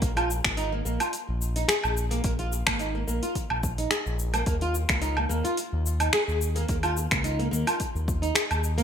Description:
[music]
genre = organic downtempo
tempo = 108 BPM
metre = 4/4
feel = swing 54% on 16ths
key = Bb minor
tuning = A4 = 440 Hz
[part]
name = flamenco guitar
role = arpeggios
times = 0.0-8.8 s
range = Bb3 to Ab4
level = -30 LUFS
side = equal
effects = lush chorus, ping-pong delay
[part]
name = smooth gliding synth bass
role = bass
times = 0.0-8.8 s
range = Ab1 to Eb2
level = -28 LUFS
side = equal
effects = none
[part]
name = deep house drum kit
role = drums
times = 0.0-8.8 s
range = finger snaps, hi-hat, shaker, woodblock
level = -28 LUFS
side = equal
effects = overdrive, gated reverb
[part]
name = electronic kick drum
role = drums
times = 0.0-8.2 s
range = none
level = -30 LUFS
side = equal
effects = overdrive
[sound]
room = moderate plate reverb, RT60 2.1 s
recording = bright 1980s-style digital production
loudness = -24 LUFS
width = side -8 dB against mid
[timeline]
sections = 0.0-8.8 A section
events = none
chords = 0.0 Bb5; 4.5 Eb5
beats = | 0.02 0.58 1.13 1.69 | 2.24 2.80 3.35 3.91 | 4.46 5.02 5.58 6.13 | 6.69 7.24 7.80 8.35

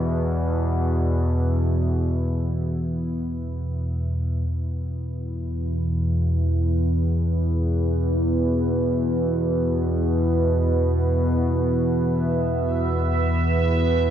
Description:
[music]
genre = dark ambient drone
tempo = free time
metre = none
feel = none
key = unclear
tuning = A4 = 440 Hz
[part]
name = deep dark ambient pad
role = sustained chords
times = 0.0-14.1 s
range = B3 to B4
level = -27 LUFS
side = right 1 dB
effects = chorus, built-in reverb
[part]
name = analog drone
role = drone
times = 0.0-14.1 s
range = E2 to B2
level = -22 LUFS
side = equal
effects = chorus
[part]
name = bubbling stepped-filter texture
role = texture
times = 12.1-14.1 s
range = E5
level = -29 LUFS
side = right 6 dB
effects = chorus, built-in reverb
[sound]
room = moderate spring reverb, RT60 2.2 s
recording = nothing above 7.9 kHz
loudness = -20 LUFS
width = side -10 dB against mid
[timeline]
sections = 0.0-4.5 A section; 4.5-14.1 B section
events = fade-out on ambient pad 0.0-4.5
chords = 0.0 E5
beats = free time

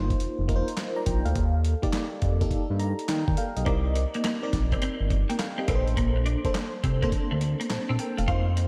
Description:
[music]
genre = R&B, new jack swing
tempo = 104 BPM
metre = 4/4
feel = swing 66% on 16ths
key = unclear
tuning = A4 = 442 Hz
[part]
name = FM electric piano with tremolo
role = accompaniment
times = 0.0-8.7 s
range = Bb3 to Bb5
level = -33 LUFS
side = equal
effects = phaser
[part]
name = smooth synth bass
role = bass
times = 0.0-8.7 s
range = E1 to Eb3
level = -28 LUFS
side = equal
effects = none
[part]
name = dusty soul sampler-style drum kit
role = drums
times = 0.1-8.7 s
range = handclaps, hi-hat, kick drum, snare drum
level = -32 LUFS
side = equal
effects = overdrive
[part]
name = clean electric guitar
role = riff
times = 3.7-8.6 s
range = A3 to F4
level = -35 LUFS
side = equal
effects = ensemble chorus
[sound]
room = light reverb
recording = none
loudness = -26 LUFS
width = mono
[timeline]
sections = 0.0-8.7 A section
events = FM electric piano fill 2.5-3.7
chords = 0.0 F7sus4; 1.4 Ebmaj7; 3.7 Cm9; 5.7 Bbmaj9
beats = 0.20 0.78 | 1.36 1.93 2.51 3.09 | 3.67 4.24 4.82 5.39 | 5.97 6.55 7.13 7.70 | 8.28

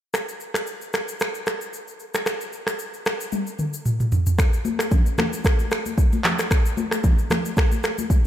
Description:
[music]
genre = afrobeats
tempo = 113 BPM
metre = 4/4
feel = swing 55% on 16ths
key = none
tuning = none
[part]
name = afro-pop drum kit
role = drums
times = 0.1-8.2 s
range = finger snaps, handclaps, kick drum, rim click, shaker, toms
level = -21 LUFS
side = equal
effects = none
[part]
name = congas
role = percussion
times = 4.6-8.1 s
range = none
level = -27 LUFS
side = left 2 dB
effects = none
[sound]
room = light reverb, digital ambience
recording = none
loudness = -20 LUFS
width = side -11 dB against mid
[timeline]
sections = 0.1-4.4 A section; 4.4-8.3 B section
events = drum fill 3.3-4.4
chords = none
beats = | 0.14 0.67 1.20 1.73 | 2.26 2.79 3.32 3.85 | 4.39 4.92 5.45 5.98 | 6.51 7.04 7.57 8.10

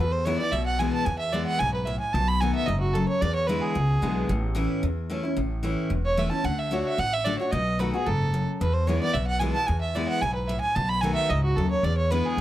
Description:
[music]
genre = bluegrass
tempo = 223 BPM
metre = 4/4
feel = straight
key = unclear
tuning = A4 = 439 Hz
[part]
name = rich fiddle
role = melody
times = 0.0-12.4 s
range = F#4 to B5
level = -27 LUFS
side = right 2 dB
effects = none
[part]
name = picked steel-string acoustic guitar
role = accompaniment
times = 0.0-12.4 s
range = E2 to F#4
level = -28 LUFS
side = left 2 dB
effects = none
[part]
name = upright bass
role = bass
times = 0.0-12.4 s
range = E1 to E2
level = -27 LUFS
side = equal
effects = none
[sound]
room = small room ambience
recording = dry, close 1970s-style studio recording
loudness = -23 LUFS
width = side -13 dB against mid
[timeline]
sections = 0.0-5.4 A section; 5.4-12.4 A section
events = none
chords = 0.0 E; 2.1 B7; 3.2 E7; 4.3 A; 6.5 D; 7.5 B7; 8.6 E; 10.8 B7; 11.8 E7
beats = 0.25 0.52 0.79 | 1.06 1.33 1.60 1.87 | 2.14 2.41 2.68 2.95 | 3.22 3.49 3.75 4.03 | 4.29 4.56 4.83 5.10 | 5.37 5.64 5.91 6.18 | 6.45 6.72 6.99 7.26 | 7.53 7.80 8.07 8.34 | 8.61 8.88 9.14 9.41 | 9.68 9.95 10.22 10.49 | 10.76 11.03 11.30 11.57 | 11.84 12.11 12.38

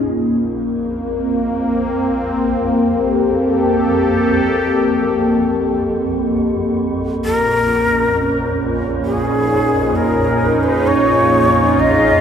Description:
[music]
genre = dark ambient drone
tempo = 66 BPM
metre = 4/4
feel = straight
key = unclear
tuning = A4 = 440 Hz
[part]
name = sweeping resonant pad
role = sustained chords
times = 0.0-12.2 s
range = Bb2 to A4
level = -15 LUFS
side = equal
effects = chorus
[part]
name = swarming drone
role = drone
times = 0.0-12.2 s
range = Bb1 to F2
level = -24 LUFS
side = equal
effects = built-in reverb
[part]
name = breathy hollow shakuhachi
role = melody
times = 7.2-12.2 s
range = Ab4 to Eb5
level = -16 LUFS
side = left 1 dB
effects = analog delay
[sound]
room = wet plate reverb, RT60 2.9 s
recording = dreamy mix soaked in reverb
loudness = -14 LUFS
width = side -8 dB against mid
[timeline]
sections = 0.0-12.2 A section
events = fade-in on synth drone 0.0-12.2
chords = 0.0 Gmadd9; 7.2 Bbm7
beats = 0.89 1.79 2.70 | 3.61 4.52 5.43 6.34 | 7.25 8.16 9.07 9.98 | 10.89 11.79

